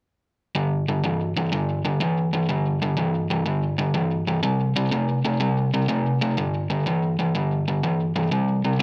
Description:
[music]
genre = blues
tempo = 124 BPM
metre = 4/4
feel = swing 68% on 8ths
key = unclear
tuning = A4 = 441 Hz
[part]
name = crunchy overdriven guitar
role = solo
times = 0.6-8.8 s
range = G2 to A3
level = -23 LUFS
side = equal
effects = tape echo
[sound]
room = moderate club reverb, RT60 0.6 s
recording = none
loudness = -24 LUFS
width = mono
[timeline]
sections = 0.6-8.8 A section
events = none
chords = 0.6 G5; 4.4 C5; 6.4 G5; 8.3 C5

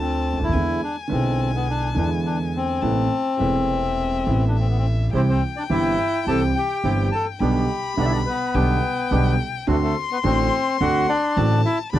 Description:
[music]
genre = tango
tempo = 106 BPM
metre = 4/4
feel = rubato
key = A minor, C major from 5.1 s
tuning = A4 = 443 Hz
[part]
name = bandoneon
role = melody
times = 0.0-12.0 s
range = A3 to A5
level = -23 LUFS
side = left 2 dB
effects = none
[part]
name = rich violin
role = second line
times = 0.0-12.0 s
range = E5 to C6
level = -29 LUFS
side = left 7 dB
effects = none
[part]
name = warm concert grand piano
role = accompaniment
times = 0.0-12.0 s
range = E1 to B4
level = -24 LUFS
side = right 3 dB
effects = none
[part]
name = upright bass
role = bass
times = 0.0-12.0 s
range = E1 to E2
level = -23 LUFS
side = equal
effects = none
[part]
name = bandoneon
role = stabs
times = 5.1-12.0 s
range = B3 to G4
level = -31 LUFS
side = right 5 dB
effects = none
[sound]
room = little or no reverb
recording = dry, close 1970s-style studio recording, vinyl crackle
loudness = -19 LUFS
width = side -13 dB against mid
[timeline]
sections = 0.0-5.1 A section; 5.1-12.0 B section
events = none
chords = 0.0 Dm7; 0.5 E7; 2.8 Amadd9; 5.1 C; 7.4 G/B; 9.7 D7

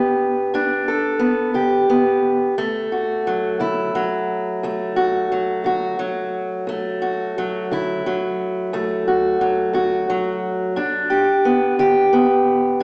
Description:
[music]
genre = blues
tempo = 59 BPM (dotted quarters)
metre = 12/8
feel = straight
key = D major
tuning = A4 = 442 Hz
[part]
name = fingerpicked steel-string acoustic guitar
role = solo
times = 0.0-12.8 s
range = D2 to A4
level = -17 LUFS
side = equal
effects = none
[sound]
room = wet recital hall reverb, RT60 1.6 s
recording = recorded in a church or concert hall, small speaker sound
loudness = -17 LUFS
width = side -34 dB against mid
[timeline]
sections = 0.0-12.8 A section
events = none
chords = 0.0 G; 2.6 D; 10.8 G

